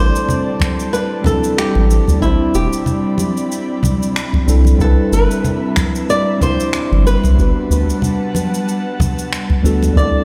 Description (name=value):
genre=sunset chillout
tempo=93 BPM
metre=4/4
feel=swing 56% on 16ths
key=G major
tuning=A4 = 439 Hz
part: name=flamenco guitar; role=melody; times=0.0-10.2 s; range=E4 to D5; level=-23 LUFS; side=equal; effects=delay, shimmer reverb
part: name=tine electric piano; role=accompaniment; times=0.0-10.2 s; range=G3 to C5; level=-22 LUFS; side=equal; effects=digital delay, shimmer reverb
part: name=airy breathy pad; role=sustained chords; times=0.0-10.2 s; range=G3 to B5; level=-26 LUFS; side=equal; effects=chorus, shimmer reverb
part: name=round analog bass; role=bass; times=0.0-10.1 s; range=E1 to D2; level=-16 LUFS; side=equal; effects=none
part: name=cabasa and finger snaps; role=drums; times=0.2-10.1 s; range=none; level=-28 LUFS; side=equal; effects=none
part: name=congas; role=percussion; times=0.3-9.9 s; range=none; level=-24 LUFS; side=equal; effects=none
part: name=electronic kick drum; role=drums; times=0.6-10.1 s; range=none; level=-20 LUFS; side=equal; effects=none
room=light reverb, small room ambience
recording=played on a big sound system in a bare room, stone room reverb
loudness=-16 LUFS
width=mono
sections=0.0-10.2 A section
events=none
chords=0.0 D7sus4; 2.2 Am11; 4.8 Cmaj7; 7.4 Gmaj9